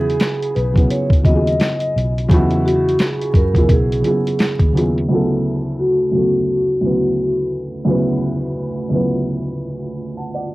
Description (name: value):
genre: lo-fi hip hop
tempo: 86 BPM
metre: 4/4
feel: swing 58% on 16ths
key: D major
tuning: A4 = 441 Hz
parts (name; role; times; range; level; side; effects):
- vibraphone with soft mallets; melody; 0.0-7.5 s; F#4 to D#5; -19 LUFS; equal; cassette tape
- felt-muted upright piano; accompaniment; 0.0-10.5 s; D2 to A5; -19 LUFS; equal; none
- vintage muted fingered electric bass; bass; 0.0-5.1 s; B1 to F#2; -20 LUFS; equal; transformer saturation
- boom bap sampler-style drum kit; drums; 0.1-5.1 s; hi-hat, kick drum, snare drum; -16 LUFS; equal; vintage 12-bit sampler grit, cassette tape
room: light reverb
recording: home recording on cassette, vinyl crackle, low-pass filter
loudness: -15 LUFS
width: side -19 dB against mid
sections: 0.0-5.1 A section; 5.1-10.5 B section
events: none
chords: 0.0 Emaj9; 5.1 Dmaj9